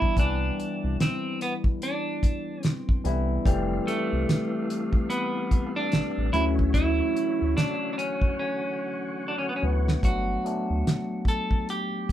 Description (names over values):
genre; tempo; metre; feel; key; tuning
R&B, neo-soul; 73 BPM; 4/4; swing 61% on 16ths; G major; A4 = 440 Hz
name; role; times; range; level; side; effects
clean electric guitar; melody; 0.0-12.1 s; A3 to A4; -29 LUFS; right 2 dB; none
overdriven tine electric piano; accompaniment; 0.0-12.1 s; E3 to B4; -30 LUFS; left 3 dB; phaser
round analog bass; bass; 0.0-10.8 s; F1 to D2; -27 LUFS; equal; none
damped 70s drum kit; drums; 0.0-12.1 s; hi-hat, kick drum, snare drum; -24 LUFS; equal; none
percussive tonewheel organ; sustained chords; 3.5-10.0 s; D3 to F#5; -37 LUFS; equal; fast rotary speaker, overdrive, chorus vibrato
room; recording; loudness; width
moderate studio ambience, RT60 0.5 s; band playing live in one room; -24 LUFS; side -12 dB against mid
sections
0.0-10.0 A section; 10.0-12.1 B section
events
drum fill 8.4-10.0; clean electric guitar solo 10.0-12.1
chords
0.0 Cmaj9; 3.5 Fmaj9; 6.3 Dmaj9; 10.0 Gmaj9